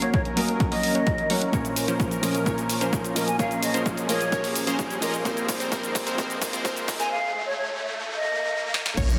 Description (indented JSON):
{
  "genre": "EDM, festival progressive house",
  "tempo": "129 BPM",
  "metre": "4/4",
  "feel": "straight",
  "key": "unclear",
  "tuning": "A4 = 439 Hz",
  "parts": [
    { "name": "mellow hollow silver concert flute", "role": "melody", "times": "0.0-8.8 s", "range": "Db5 to Ab5", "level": "-31 LUFS", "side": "equal", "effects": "dub echo" },
    { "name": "felt-muted upright piano", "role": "accompaniment", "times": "0.0-7.1 s", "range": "Bb2 to Db5", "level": "-32 LUFS", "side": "equal", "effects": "sidechain pumping, dub echo" },
    { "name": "lush unison pad", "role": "sustained chords", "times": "0.0-9.2 s", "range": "Eb3 to Bb4", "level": "-36 LUFS", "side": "equal", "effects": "chorus, phaser, sidechain pumping" },
    { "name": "supersaw stab", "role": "riff", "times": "0.0-9.2 s", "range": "F3 to Gb5", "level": "-32 LUFS", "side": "equal", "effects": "sidechain pumping, low-pass filter, dub echo" },
    { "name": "house drum kit", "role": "drums", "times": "0.0-9.2 s", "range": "crash cymbal, hi-hat, shaker, snare drum", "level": "-33 LUFS", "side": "equal", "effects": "none" },
    { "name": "riser, swell and impact", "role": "sound effects", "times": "0.0-9.2 s", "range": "none", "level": "-37 LUFS", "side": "equal", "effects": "none" },
    { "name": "electronic kick drum", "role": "drums", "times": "0.1-9.1 s", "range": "none", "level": "-30 LUFS", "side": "equal", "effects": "overdrive" },
    { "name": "unison pluck", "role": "arpeggios", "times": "9.0-9.2 s", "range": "Db5", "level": "-36 LUFS", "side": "equal", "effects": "sidechain pumping" },
    { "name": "saturated sub bass", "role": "bass", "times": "9.0-9.2 s", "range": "Bb1", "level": "-26 LUFS", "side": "equal", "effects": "tube saturation, sidechain pumping" }
  ],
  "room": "wet lush hall reverb, RT60 1.6 s, digital ambience",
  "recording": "dense, heavily limited modern master, high-pass filter",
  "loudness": "-25 LUFS",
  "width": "mono",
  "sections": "0.0-9.0 A section",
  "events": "build-up 0.0-9.0; riser 0.0-9.0; filter sweep on supersaw synth 0.0-9.0; filter sweep 0.0-9.0; drum fill 1.5-7.1, 8.7; swell 8.0-9.0; impact 9.0",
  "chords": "0.0 Gb; 1.5 Bbm; 3.4 Db; 5.3 Ab; 7.1 N.C.",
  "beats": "0.14 0.60 1.07 | 1.53 2.00 2.46 2.93 | 3.39 3.86 4.32 4.79 | 5.25 5.72 6.18 6.65 | 7.11 7.58 8.04 8.51 | 8.97"
}